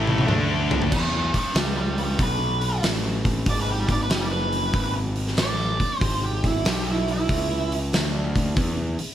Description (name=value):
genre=blues rock power trio and southern rock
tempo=94 BPM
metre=4/4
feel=swing 66% on 8ths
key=E mixolydian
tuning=A4 = 439 Hz
part: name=overdriven electric guitar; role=riff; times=0.0-0.9 s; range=A2 to D4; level=-23 LUFS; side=equal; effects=none
part: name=fuzz picked electric bass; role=bass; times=0.0-9.0 s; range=F#1 to E2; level=-26 LUFS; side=equal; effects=overdrive
part: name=oversized low-tuned drum kit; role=drums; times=0.1-9.1 s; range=crash cymbal, hi-hat, kick drum, snare drum, toms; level=-24 LUFS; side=equal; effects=none
part: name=octave-fuzz lead guitar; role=melody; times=0.9-7.7 s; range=D4 to D5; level=-28 LUFS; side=right 2 dB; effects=distortion
room=small room ambience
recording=none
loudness=-21 LUFS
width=side -11 dB against mid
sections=0.9-9.1 A section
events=drum fill 0.0-0.9; lead electric guitar solo 0.9-9.1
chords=0.3 D5; 0.9 E